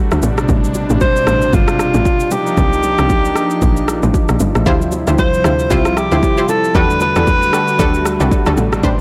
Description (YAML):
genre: amapiano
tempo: 115 BPM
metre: 4/4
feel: swing 58% on 16ths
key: unclear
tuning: A4 = 440 Hz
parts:
  - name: warm analog pad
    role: sustained chords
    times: 0.0-9.0 s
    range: B2 to F#4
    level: -22 LUFS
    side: equal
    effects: subtle chorus
  - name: tight log drum bass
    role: bass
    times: 0.1-9.0 s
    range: G1 to E2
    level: -20 LUFS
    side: equal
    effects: none
  - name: deep house drum kit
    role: drums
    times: 0.1-9.0 s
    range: kick drum, rim click, shaker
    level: -20 LUFS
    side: equal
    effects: none
  - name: bongos and congas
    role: percussion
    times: 0.2-9.0 s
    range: none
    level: -27 LUFS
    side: equal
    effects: none
  - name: breathy alto saxophone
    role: melody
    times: 1.0-8.5 s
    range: F4 to C5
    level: -19 LUFS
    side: equal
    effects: none
  - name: analog pluck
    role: stabs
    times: 4.7-8.9 s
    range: D4 to C5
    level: -22 LUFS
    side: equal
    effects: chorus, digital delay
room: light reverb, digital ambience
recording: blown-out, overdriven recording, overdrive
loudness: -14 LUFS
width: mono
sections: 0.0-9.0 A section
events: none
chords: 0.2 Am11; 2.3 Cm11; 4.7 Dm11; 6.8 Em11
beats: | 0.49 1.01 1.53 2.05 | 2.58 3.10 3.62 4.14 | 4.66 5.18 5.71 6.23 | 6.75 7.27 7.79 8.31 | 8.84